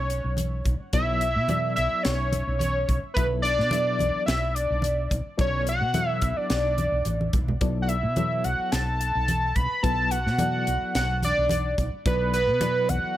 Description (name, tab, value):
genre	electric jazz fusion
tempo	108 BPM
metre	4/4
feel	straight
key	B minor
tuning	A4 = 441 Hz
part	fat analog lead	melody	0.0-13.2 s	B4 to B5	-25 LUFS	equal	chorus
part	woody fretless electric bass	bass	0.0-13.1 s	A1 to B2	-27 LUFS	equal	analog chorus
part	crisp fusion drum kit	drums	0.1-13.0 s	hi-hat, kick drum, snare drum	-29 LUFS	equal	none
part	congas	percussion	0.4-13.0 s	none	-31 LUFS	equal	none
part	reed electric piano	accompaniment	0.9-13.2 s	F#3 to E5	-31 LUFS	left 3 dB	tremolo
room	light reverb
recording	none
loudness	-22 LUFS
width	side -13 dB against mid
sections	0.0-13.2 A section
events	drum fill 7.1-7.6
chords	0.0 Bm11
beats	0.37 | 0.93 1.49 2.04 2.60 | 3.16 3.72 4.28 4.83 | 5.39 5.95 6.50 7.06 | 7.62 8.17 8.73 9.28 | 9.84 10.39 10.95 11.50 | 12.05 12.61 13.16